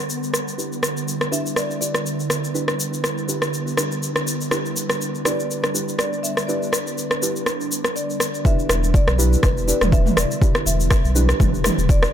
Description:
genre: afro house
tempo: 122 BPM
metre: 4/4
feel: swing 55% on 16ths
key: E minor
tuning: A4 = 440 Hz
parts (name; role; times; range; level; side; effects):
- ethereal airy pad; sustained chords; 0.0-12.1 s; D3 to F#5; -27 LUFS; right 1 dB; ensemble chorus, built-in reverb, sidechain pumping
- deep house drum kit; drums; 0.1-12.1 s; rim click, shaker, toms; -22 LUFS; equal; none
- deep mellow chord stab; stabs; 0.6-12.1 s; D4 to B4; -29 LUFS; right 2 dB; chorus, sidechain pumping, tape echo
- marimba with soft mallets; melody; 1.3-12.1 s; B4 to E5; -30 LUFS; left 2 dB; tape echo
- electronic kick drum; drums; 8.4-12.0 s; none; -17 LUFS; equal; none
- warm sub bass; bass; 8.7-12.1 s; E1 to B1; -20 LUFS; equal; sidechain pumping
room: moderate plate reverb, RT60 2.0 s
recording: dreamy mix soaked in reverb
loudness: -18 LUFS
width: side -10 dB against mid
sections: 0.0-8.4 A section; 8.4-12.1 B section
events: filter sweep on synth stab 0.0-8.4; filter sweep on ambient pad 0.0-8.4; drop 8.4-12.1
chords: 0.0 Em7

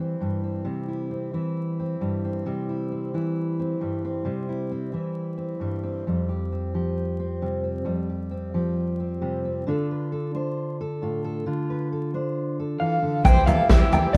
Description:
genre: indie folk with a building arrangement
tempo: 134 BPM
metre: 4/4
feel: straight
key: C major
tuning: A4 = 440 Hz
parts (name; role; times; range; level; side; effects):
- fingerpicked steel-string acoustic guitar; accompaniment; 0.0-13.3 s; F2 to C5; -29 LUFS; equal; none
- electric guitar through a small old amp; melody; 12.8-14.2 s; D5 to G5; -27 LUFS; equal; tremolo
- rich fiddle; second line; 12.8-14.2 s; G4 to C5; -34 LUFS; equal; tape echo
- picked steel-string acoustic guitar; accompaniment; 13.2-14.2 s; C3 to C5; -33 LUFS; equal; none
- fingered electric bass; bass; 13.2-14.2 s; C2; -28 LUFS; equal; none
- natural country drum kit; drums; 13.2-14.2 s; kick drum, snare drum, toms; -19 LUFS; equal; none
- hand-pumped harmonium; sustained chords; 13.3-14.2 s; C3 to G4; -36 LUFS; equal; none
- ukulele; arpeggios; 13.3-14.2 s; G4 to G5; -27 LUFS; equal; none
- tube shaker; percussion; 13.3-14.0 s; none; -52 LUFS; equal; none
room: moderate studio reverb, RT60 0.6 s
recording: band playing live in one room, vinyl crackle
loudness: -26 LUFS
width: mono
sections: 0.0-13.3 A section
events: none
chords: 0.0 C; 6.1 Fsus2; 9.7 Dm; 13.3 C

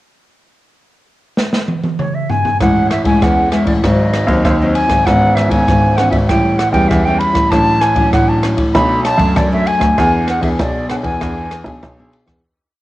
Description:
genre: samba and choro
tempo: 98 BPM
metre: 4/4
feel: straight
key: A major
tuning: A4 = 441 Hz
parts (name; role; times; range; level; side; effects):
- open jazz drum kit; drums; 1.4-12.4 s; kick drum, ride cymbal, rim click, snare drum, toms; -18 LUFS; equal; cassette tape
- silver concert flute; melody; 2.0-11.9 s; B#4 to B5; -16 LUFS; right 1 dB; none
- nylon-string guitar; accompaniment; 2.6-12.4 s; F#2 to G#4; -18 LUFS; left 2 dB; cassette tape
- dark grand piano; bass; 2.6-12.4 s; G#1 to F#2; -16 LUFS; equal; none
room: moderate spring reverb, RT60 1.8 s, studio reverb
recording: home recording on cassette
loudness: -11 LUFS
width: side -16 dB against mid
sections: 0.1-2.6 pickup bar; 2.6-12.4 A section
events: drum fill 1.4-2.6; fade-out 10.0-12.4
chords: 0.1 N.C.; 2.6 Amaj7; 3.8 G#7; 5.1 C#m7/G#; 6.3 A7; 7.5 Dmaj7/A; 8.8 Bm7; 10.0 E7

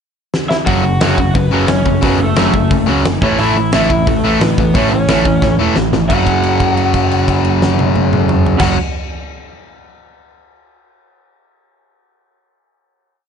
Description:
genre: punk rock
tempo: 177 BPM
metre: 4/4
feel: straight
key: F# minor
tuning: A4 = 440 Hz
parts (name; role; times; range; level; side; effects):
- big rock drum kit; drums; 0.3-8.7 s; crash cymbal, hi-hat, kick drum, snare drum, toms; -17 LUFS; equal; none
- lead guitar through a small cranked amp; melody; 0.5-8.7 s; A3 to F#5; -18 LUFS; left 1 dB; overdrive
- crunchy overdriven guitar; riff; 0.7-8.8 s; F#2 to A3; -17 LUFS; right 13 dB; none
- distorted electric guitar; riff; 0.7-8.8 s; F#2 to A3; -17 LUFS; left 11 dB; overdrive
- overdriven picked electric bass; bass; 0.7-8.7 s; E1 to C#2; -19 LUFS; equal; none
room: light reverb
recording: nothing above 10.6 kHz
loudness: -11 LUFS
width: side -7 dB against mid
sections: 0.0-0.7 pickup bar; 0.7-6.1 verse; 6.1-8.8 final chord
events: drum fill 0.3-0.7, 5.4-6.1; held note 6.1-8.6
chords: 0.0 N.C.; 0.7 F#m; 3.2 A; 6.1 F#5

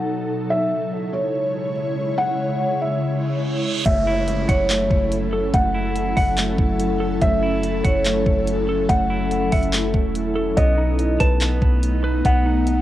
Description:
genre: hip hop, atmospheric cloud-rap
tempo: 143 BPM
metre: 4/4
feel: half-time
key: F# dorian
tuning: A4 = 440 Hz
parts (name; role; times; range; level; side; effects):
- felt-muted upright piano; melody; 0.0-12.8 s; B4 to F#5; -24 LUFS; equal; low-pass filter, cassette tape, analog delay
- ethereal airy pad; sustained chords; 0.0-12.8 s; B2 to C#5; -23 LUFS; left 1 dB; ensemble chorus, built-in reverb, sidechain pumping, low-pass filter, cassette tape
- reverse cymbal and downlifter; sound effects; 3.3-7.2 s; none; -32 LUFS; right 3 dB; none
- semi-hollow electric guitar; arpeggios; 3.9-12.8 s; A3 to A5; -27 LUFS; right 3 dB; cassette tape, analog delay
- soft 808-style bass; bass; 3.9-12.8 s; E1 to B1; -23 LUFS; equal; none
- smooth R&B drum kit; drums; 3.9-12.8 s; handclaps, hi-hat, kick drum; -21 LUFS; equal; cassette tape
room: little or no reverb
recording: home recording on cassette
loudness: -18 LUFS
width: side -13 dB against mid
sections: 0.0-3.9 A section; 3.9-12.8 B section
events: reverse cymbal 3.3-3.9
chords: 0.0 B7; 0.5 C#m; 3.9 F#m7; 10.6 B7

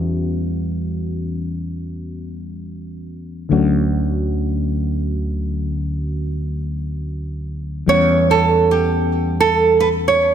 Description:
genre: sunset chillout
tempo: free time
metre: none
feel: none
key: E dorian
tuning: A4 = 444 Hz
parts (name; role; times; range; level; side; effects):
- mellow FM electric piano; accompaniment; 0.0-10.3 s; D3 to F#5; -23 LUFS; moving between left 6 dB and right 1 dB; chorus, auto-pan, low-pass filter, digital delay
- fretless electric bass; bass; 0.0-10.3 s; D2 to E2; -22 LUFS; equal; none
- nylon-string guitar; melody; 7.9-10.3 s; G4 to C#5; -14 LUFS; right 4 dB; digital delay
room: moderate lush hall reverb, RT60 1.7 s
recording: none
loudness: -17 LUFS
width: side -9 dB against mid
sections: 0.0-10.3 A section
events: filter sweep on FM electric piano 0.0-10.3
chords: 0.0 Em69; 3.5 Dmaj7; 7.9 Em69

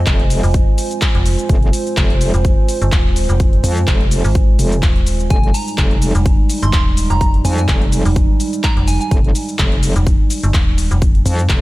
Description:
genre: bass house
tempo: 126 BPM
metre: 4/4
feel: swing 55% on 16ths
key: F minor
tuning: A4 = 440 Hz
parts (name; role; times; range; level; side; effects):
- soft synth bell; melody; 0.0-0.5, 5.3-9.1 s; Eb5 to C6; -26 LUFS; right 2 dB; chorus, phaser, diffuse ambient delay
- dark analog pad; sustained chords; 0.0-11.6 s; G3 to C5; -23 LUFS; right 3 dB; wide subtle chorus, sidechain pumping
- metallic wobble bass; bass; 0.0-11.6 s; F1 to F2; -16 LUFS; equal; chorus, sidechain pumping
- warbly tape-like pad; texture; 0.0-11.6 s; Ab5; -35 LUFS; right 5 dB; chorus, built-in reverb, sidechain pumping
- big-room dance drum kit; drums; 0.1-11.6 s; handclaps, hi-hat, shaker; -23 LUFS; left 1 dB; none
- electronic kick drum; drums; 0.1-11.6 s; none; -14 LUFS; equal; none
- metallic FM bass; bass; 0.4-11.2 s; Eb1 to Ab1; -16 LUFS; equal; overdrive, sidechain pumping
room: little or no reverb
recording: none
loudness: -12 LUFS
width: side -18 dB against mid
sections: 0.0-11.6 A section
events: none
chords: 0.0 Fm

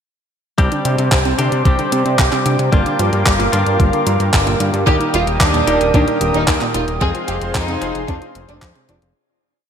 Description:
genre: italo disco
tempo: 112 BPM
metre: 4/4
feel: straight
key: C minor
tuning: A4 = 442 Hz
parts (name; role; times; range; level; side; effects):
- warm analog pad; sustained chords; 0.6-9.1 s; Ab4 to Eb6; -21 LUFS; right 2 dB; chorus, shimmer reverb
- analog pluck; arpeggios; 0.6-9.0 s; Bb2 to C4; -24 LUFS; right 2 dB; chorus, ping-pong delay, shimmer reverb
- direct-recorded clean electric guitar; stabs; 0.6-9.1 s; Eb3 to Ab4; -23 LUFS; left 3 dB; vintage 12-bit sampler grit, ping-pong delay, shimmer reverb
- fat analog bass; bass; 0.6-9.1 s; Eb1 to C3; -20 LUFS; equal; none
- clean 12-bit digital drum machine; drums; 0.6-9.1 s; handclaps, hi-hat; -21 LUFS; equal; overdrive, gated reverb
- electronic kick drum; drums; 0.6-8.7 s; none; -16 LUFS; equal; overdrive
- dark studio violin section; melody; 4.9-9.0 s; D4 to Ab4; -20 LUFS; right 1 dB; ping-pong delay, shimmer reverb
room: moderate lush hall reverb, RT60 2.5 s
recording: bright 1980s-style digital production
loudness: -13 LUFS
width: side -8 dB against mid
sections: 0.6-9.2 verse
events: fade-out 6.3-9.2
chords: 0.6 Csus2; 2.7 Gm7; 4.9 Eb; 7.0 Fm

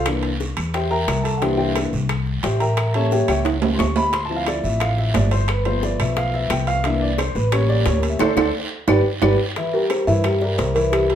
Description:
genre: Afro-Cuban jazz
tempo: 177 BPM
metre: 4/4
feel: straight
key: C mixolydian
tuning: A4 = 440 Hz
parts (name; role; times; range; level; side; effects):
- warm concert grand piano; accompaniment; 0.0-11.2 s; E3 to C#6; -21 LUFS; left 1 dB; none
- upright bass; bass; 0.0-11.2 s; G1 to G2; -22 LUFS; equal; none
- bongos; percussion; 0.1-11.1 s; none; -30 LUFS; left 4 dB; none
- claves; percussion; 0.1-11.1 s; none; -33 LUFS; left 4 dB; none
- guiro; percussion; 0.1-11.2 s; none; -34 LUFS; right 4 dB; none
- timbales; percussion; 0.1-11.2 s; none; -25 LUFS; right 7 dB; none
- kalimba; melody; 9.7-11.2 s; G4 to E5; -21 LUFS; equal; none
room: wet club reverb, RT60 0.8 s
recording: heard from further back in the room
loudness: -17 LUFS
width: side -10 dB against mid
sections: 0.0-9.6 A section; 9.6-11.2 B section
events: grand piano solo 0.0-9.6; drum fill 3.5-4.1, 8.2-9.6; band accent 8.2-9.6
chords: 0.1 C7; 2.8 A7b9; 4.1 Dm7; 5.5 G7; 6.8 C7; 7.5 A7b9; 8.2 D5; 8.9 G; 9.6 C7

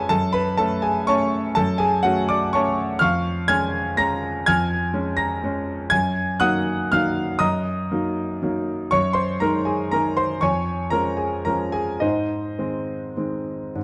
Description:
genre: classical, piano waltz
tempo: 102-131 BPM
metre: 3/4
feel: rubato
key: Db major from 3.0 s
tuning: A4 = 440 Hz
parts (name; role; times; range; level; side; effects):
- clear concert grand piano; solo; 0.0-13.8 s; E#2 to Bb6; -22 LUFS; equal; none
room: moderate recital hall reverb, RT60 1.3 s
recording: close, detailed microphones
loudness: -22 LUFS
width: mono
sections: 0.0-13.8 A section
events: none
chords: 0.1 F#m; 3.0 Db/F; 5.9 Ebm/Gb; 8.9 Ab7/Gb; 10.4 Db/F; 12.0 Ab

